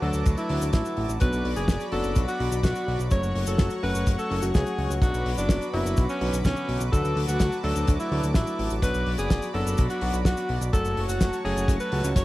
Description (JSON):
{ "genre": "italo disco", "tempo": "126 BPM", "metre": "4/4", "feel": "straight", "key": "B minor", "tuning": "A4 = 440 Hz", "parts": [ { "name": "bright alto saxophone", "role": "melody", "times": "0.0-12.2 s", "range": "C#4 to C#5", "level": "-30 LUFS", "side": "equal", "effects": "tape echo" }, { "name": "warm analog pad", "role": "sustained chords", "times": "0.0-12.2 s", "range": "F#4 to D6", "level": "-34 LUFS", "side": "equal", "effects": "chorus" }, { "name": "warm electric grand piano", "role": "stabs", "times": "0.0-12.2 s", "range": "D3 to F#4", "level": "-32 LUFS", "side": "left 1 dB", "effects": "none" }, { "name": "fat analog bass", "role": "bass", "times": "0.0-12.2 s", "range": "F#1 to D2", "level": "-28 LUFS", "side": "equal", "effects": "none" }, { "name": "damped 70s drum kit", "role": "drums", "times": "0.0-12.2 s", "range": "cabasa, hi-hat, snare drum", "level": "-30 LUFS", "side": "equal", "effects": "studio reverb" }, { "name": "kick drum", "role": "drums", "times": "0.3-12.2 s", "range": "none", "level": "-23 LUFS", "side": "equal", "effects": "studio reverb" } ], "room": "small room reverb", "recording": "dry, close 1970s-style studio recording, vinyl crackle", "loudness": "-22 LUFS", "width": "side -17 dB against mid", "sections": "0.0-12.2 A section", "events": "none", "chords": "0.0 D; 1.2 Bm; 3.1 F#m; 5.0 Bm; 6.9 D; 8.8 Bm; 10.7 F#m", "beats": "0.26 0.73 | 1.21 1.69 2.16 2.64 | 3.11 3.59 4.07 4.54 | 5.02 5.49 5.97 6.45 | 6.92 7.40 7.88 8.35 | 8.83 9.30 9.78 10.26 | 10.73 11.21 11.69 12.16" }